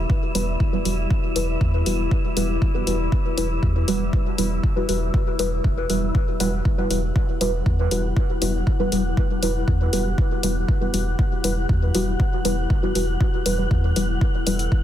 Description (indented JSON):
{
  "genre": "dub techno",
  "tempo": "119 BPM",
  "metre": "4/4",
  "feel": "straight",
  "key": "E minor",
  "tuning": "A4 = 438 Hz",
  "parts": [
    { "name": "warbly tape-like pad", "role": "sustained chords", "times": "0.0-14.8 s", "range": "G3 to A4", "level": "-32 LUFS", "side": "left 4 dB", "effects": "chorus, built-in reverb, vintage 12-bit sampler grit, sidechain pumping" },
    { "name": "pure sine sub bass", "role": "bass", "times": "0.0-14.7 s", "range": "E1 to E2", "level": "-24 LUFS", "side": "equal", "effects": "sidechain pumping" },
    { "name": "wind-like tuned noise texture", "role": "texture", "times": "0.0-14.8 s", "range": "E5 to F#5", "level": "-34 LUFS", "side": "equal", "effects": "built-in reverb, sidechain pumping" },
    { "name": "electronic kick drum", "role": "drums", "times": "0.1-14.8 s", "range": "none", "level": "-21 LUFS", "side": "equal", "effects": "overdrive" },
    { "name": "deep mellow chord stab", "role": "stabs", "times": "0.3-14.6 s", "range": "G3 to B4", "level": "-25 LUFS", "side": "equal", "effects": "chorus, phaser, sidechain pumping, dub echo" },
    { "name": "electronic hi-hat", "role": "drums", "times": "0.3-14.7 s", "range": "none", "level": "-29 LUFS", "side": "left 4 dB", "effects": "overdrive" }
  ],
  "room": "light reverb, digital ambience",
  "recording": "dense, heavily limited modern master",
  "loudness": "-19 LUFS",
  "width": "side -11 dB against mid",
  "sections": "0.0-14.8 A section",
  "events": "none",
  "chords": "0.0 Emadd9"
}